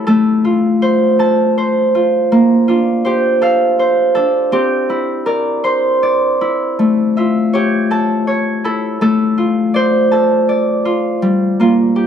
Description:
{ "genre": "children's music, lullaby", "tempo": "54 BPM (dotted quarters)", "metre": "6/8", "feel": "rubato", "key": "F major", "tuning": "A4 = 439 Hz", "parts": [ { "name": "Celtic harp", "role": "solo", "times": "0.0-12.1 s", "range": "G3 to C6", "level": "-12 LUFS", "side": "equal", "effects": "none" } ], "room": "light reverb", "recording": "dark, warm production", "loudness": "-12 LUFS", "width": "side -8 dB against mid", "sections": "0.0-12.1 A section", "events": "none", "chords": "0.1 F/A; 2.3 Bbadd9; 4.5 Cadd9; 6.8 A; 11.2 Gm", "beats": "| 0.07 1.20 | 2.31 3.42 | 4.53 5.64 | 6.78 7.91 | 9.01 10.12 | 11.22" }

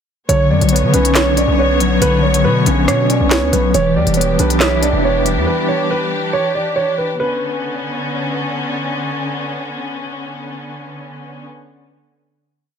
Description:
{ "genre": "hip hop, drill", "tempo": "139 BPM", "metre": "4/4", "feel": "half-time", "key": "B minor", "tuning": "A4 = 439 Hz", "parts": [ { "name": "dark concert grand piano", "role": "melody", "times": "0.3-8.5 s", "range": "B4 to D5", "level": "-19 LUFS", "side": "right 2 dB", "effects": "none" }, { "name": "mellow electric guitar", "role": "accompaniment", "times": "0.3-6.3 s", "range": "D3 to E4", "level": "-17 LUFS", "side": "left 1 dB", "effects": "tremolo" }, { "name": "rich symphonic string section", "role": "sustained chords", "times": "0.3-11.4 s", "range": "D3 to C#5", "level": "-22 LUFS", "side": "left 1 dB", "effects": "none" }, { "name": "distorted 808-style bass", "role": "bass", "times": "0.3-5.5 s", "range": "E1 to D3", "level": "-18 LUFS", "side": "equal", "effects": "distortion" }, { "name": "drill drum kit", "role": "drums", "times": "0.3-5.4 s", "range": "handclaps, hi-hat, rim click, snare drum", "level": "-19 LUFS", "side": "left 1 dB", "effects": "none" } ], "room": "light reverb, small room ambience", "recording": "none", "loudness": "-13 LUFS", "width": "side -8 dB against mid", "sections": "0.3-7.2 hook; 7.2-10.7 final chord", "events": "none", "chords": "0.3 Bmadd9; 3.7 Em7; 7.2 Bmadd9", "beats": "| 0.29 0.72 1.15 1.59 | 2.02 2.45 2.88 3.31 | 3.74 4.18 4.61 5.04 | 5.47 5.90 6.33 6.77 | 7.20 7.63 8.06 8.49 | 8.92 9.36 9.79 10.22" }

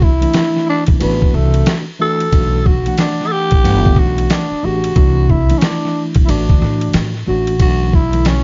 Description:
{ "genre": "hip hop, jazz-hop", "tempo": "91 BPM", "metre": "4/4", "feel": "swing 63% on 16ths", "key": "unclear", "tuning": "A4 = 440 Hz", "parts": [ { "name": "growling tenor saxophone", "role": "melody", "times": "0.0-8.4 s", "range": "A3 to A4", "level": "-21 LUFS", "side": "equal", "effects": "plate reverb" }, { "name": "tine electric piano", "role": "accompaniment", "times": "0.0-8.4 s", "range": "D3 to F#5", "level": "-23 LUFS", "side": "equal", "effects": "plate reverb" }, { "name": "upright bass", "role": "bass", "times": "0.0-8.4 s", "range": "G1 to A2", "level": "-19 LUFS", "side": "equal", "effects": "none" }, { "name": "boom bap sampler-style drum kit", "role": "drums", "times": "0.0-8.4 s", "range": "hi-hat, kick drum, ride cymbal, snare drum", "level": "-18 LUFS", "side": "equal", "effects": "none" } ], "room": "light reverb", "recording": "dark, warm production, vinyl crackle, nothing above 7.5 kHz", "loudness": "-14 LUFS", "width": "mono", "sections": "0.0-8.4 A section", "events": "none", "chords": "0.0 Cadd9; 1.0 Asus4; 2.3 Bm7; 3.6 Gmaj9; 5.0 Cadd9(#11); 6.3 Asus4; 7.6 Bm11", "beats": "0.35 1.01 1.67 | 2.33 2.98 3.64 4.30 | 4.96 5.62 6.28 6.94 | 7.60 8.26" }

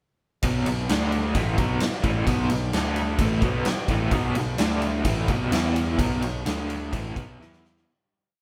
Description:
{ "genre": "classic rock", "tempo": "129 BPM", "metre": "4/4", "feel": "straight", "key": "unclear", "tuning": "A4 = 440 Hz", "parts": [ { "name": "reed electric piano", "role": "accompaniment", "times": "0.4-7.8 s", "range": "D4 to E5", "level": "-41 LUFS", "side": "equal", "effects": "none" }, { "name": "raw garage guitar", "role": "riff", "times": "0.4-7.9 s", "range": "A2 to E4", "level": "-28 LUFS", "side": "equal", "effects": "overdrive, tremolo" }, { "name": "fuzz picked electric bass", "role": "bass", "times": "0.4-7.8 s", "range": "A1 to E2", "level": "-31 LUFS", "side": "equal", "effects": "overdrive" }, { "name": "huge arena drum kit", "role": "drums", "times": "0.4-7.9 s", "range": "kick drum, ride cymbal, snare drum", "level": "-29 LUFS", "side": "equal", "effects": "none" } ], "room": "light reverb", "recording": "band playing live in one room", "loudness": "-24 LUFS", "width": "mono", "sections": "0.4-7.9 riff", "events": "fade-out 6.0-7.9; drum fill 7.4-7.9", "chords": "0.4 B; 0.9 D5; 1.4 B; 2.7 D5; 3.2 B; 4.6 D5; 5.1 B; 5.5 E5; 6.0 B; 6.5 D5; 6.9 B; 7.4 E5", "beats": "| 0.43 0.89 1.35 1.81 | 2.27 2.73 3.20 3.66 | 4.13 4.59 5.06 5.53 | 6.00 6.46 6.93 7.40" }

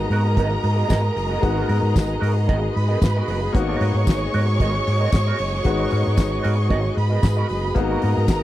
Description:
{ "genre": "disco", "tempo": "114 BPM", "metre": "4/4", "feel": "straight", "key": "G# minor", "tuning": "A4 = 440 Hz", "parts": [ { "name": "warm studio violin section", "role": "second line", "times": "0.0-8.4 s", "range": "A#4 to C#6", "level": "-27 LUFS", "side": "right 2 dB", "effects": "none" }, { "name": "bright grand piano", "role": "accompaniment", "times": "0.0-8.4 s", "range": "G#3 to F#4", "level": "-28 LUFS", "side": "left 6 dB", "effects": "none" }, { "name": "clean electric guitar", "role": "accompaniment", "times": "0.0-8.3 s", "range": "B3 to D#5", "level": "-29 LUFS", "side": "right 6 dB", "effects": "wah" }, { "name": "rich studio string section", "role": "sustained chords", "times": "0.0-8.4 s", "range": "G#3 to D#5", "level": "-28 LUFS", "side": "equal", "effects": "none" }, { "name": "overdriven fingered electric bass", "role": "bass", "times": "0.1-8.4 s", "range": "F#1 to G#2", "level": "-21 LUFS", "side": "equal", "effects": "none" }, { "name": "damped 70s drum kit", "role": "drums", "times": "0.1-8.4 s", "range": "hi-hat, kick drum, snare drum", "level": "-19 LUFS", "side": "equal", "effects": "none" }, { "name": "tambourine", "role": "percussion", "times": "0.9-8.4 s", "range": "none", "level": "-40 LUFS", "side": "left 15 dB", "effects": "none" } ], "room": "little or no reverb", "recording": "dry, close 1970s-style studio recording", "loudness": "-18 LUFS", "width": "side -14 dB against mid", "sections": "0.0-8.4 A section", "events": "none", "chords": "0.0 G#m9", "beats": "0.38 0.90 | 1.43 1.96 2.48 3.01 | 3.54 4.07 4.59 5.12 | 5.65 6.18 6.70 7.23 | 7.76 8.29" }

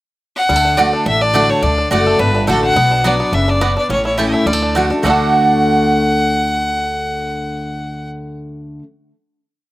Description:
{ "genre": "bluegrass", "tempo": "211 BPM", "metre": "4/4", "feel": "swing 54% on 8ths", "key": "D major", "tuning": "A4 = 442 Hz", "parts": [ { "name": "clear fiddle", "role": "melody", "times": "0.4-8.1 s", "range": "A4 to F#5", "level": "-17 LUFS", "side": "left 1 dB", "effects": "none" }, { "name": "picked steel-string acoustic guitar", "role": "accompaniment", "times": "0.5-8.8 s", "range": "A2 to F#4", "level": "-19 LUFS", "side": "left 2 dB", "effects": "none" }, { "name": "bluegrass banjo", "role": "arpeggios", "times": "0.5-8.8 s", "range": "G3 to A4", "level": "-22 LUFS", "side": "right 2 dB", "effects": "slapback echo" }, { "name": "upright bass", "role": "bass", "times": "0.5-8.8 s", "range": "F#1 to D2", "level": "-21 LUFS", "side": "equal", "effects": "none" }, { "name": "mandolin", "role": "stabs", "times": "0.8-8.8 s", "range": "A3 to A5", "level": "-17 LUFS", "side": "right 4 dB", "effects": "slapback echo" } ], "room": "little or no reverb", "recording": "recorded outdoors, with no room sound", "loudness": "-12 LUFS", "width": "side -16 dB against mid", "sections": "0.0-0.5 pickup bar; 0.5-5.0 A section; 5.0-7.3 final chord", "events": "none", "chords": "0.5 D; 2.8 Bm; 3.9 A; 4.5 D", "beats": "0.21 | 0.49 0.78 1.06 1.34 | 1.63 1.91 2.19 2.48 | 2.76 3.05 3.33 3.61 | 3.90 4.18 4.47 4.75 | 5.04 5.32 5.61 5.89 | 6.18 6.47 6.75 7.04" }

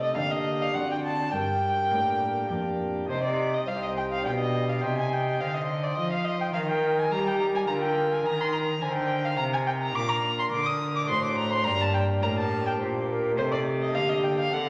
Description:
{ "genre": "classical, baroque-style sonata movement with continuo", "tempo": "105 BPM", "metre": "3/4", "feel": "straight", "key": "G minor, C minor from 3.1 s, G minor from 10.0 s", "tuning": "A4 = 440 Hz", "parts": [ { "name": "mellow baroque flute", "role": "melody", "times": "0.0-14.7 s", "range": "G4 to Eb5", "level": "-34 LUFS", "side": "equal", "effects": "none" }, { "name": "warm violin", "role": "second line", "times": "0.0-14.7 s", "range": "C5 to Eb6", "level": "-30 LUFS", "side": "equal", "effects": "none" }, { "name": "chamber organ, principal chorus", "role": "accompaniment", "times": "0.0-14.7 s", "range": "C2 to C5", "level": "-34 LUFS", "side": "equal", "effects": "none" }, { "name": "rich cello", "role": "bass", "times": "0.0-14.7 s", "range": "C2 to G3", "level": "-34 LUFS", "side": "equal", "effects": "none" } ], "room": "wet recital hall reverb, RT60 1.6 s", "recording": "none", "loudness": "-27 LUFS", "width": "mono", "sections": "0.0-3.1 A section; 3.1-14.7 A section", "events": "none", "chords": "0.2 Gm/D; 0.7 D7; 1.3 Gm; 3.1 Cm; 4.2 G/B; 4.8 Cm; 6.5 Eb; 7.7 Bb/D; 8.3 Eb5; 10.0 Bbadd11; 11.1 D7/A; 11.7 Gm; 13.4 Adim/C; 13.9 Gm/D", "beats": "0.16 0.74 | 1.33 1.92 2.50 | 3.09 3.67 4.25 | 4.83 5.40 5.97 | 6.55 7.12 7.69 | 8.26 8.82 9.39 | 9.96 10.53 11.10 | 11.67 12.24 12.81 | 13.37 13.95 14.53" }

